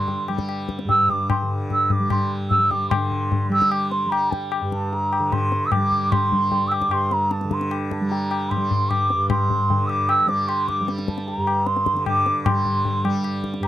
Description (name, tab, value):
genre	indian classical, Hindustani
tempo	151 BPM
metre	4/4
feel	straight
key	G raga bhimpalasi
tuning	A4 = 441 Hz
part	mellow hollow bansuri	melody	0.0-13.7 s	G5 to E6	-21 LUFS	right 1 dB	none
part	tanpura	drone	0.0-13.7 s	G2 to G3	-26 LUFS	right 2 dB	none
part	tabla	percussion	0.1-13.7 s	none	-24 LUFS	left 4 dB	none
room	little or no reverb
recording	dry, close 1970s-style studio recording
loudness	-19 LUFS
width	side -13 dB against mid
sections	0.0-2.9 A section; 2.9-13.7 B section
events	speeding up 0.0-13.7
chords	none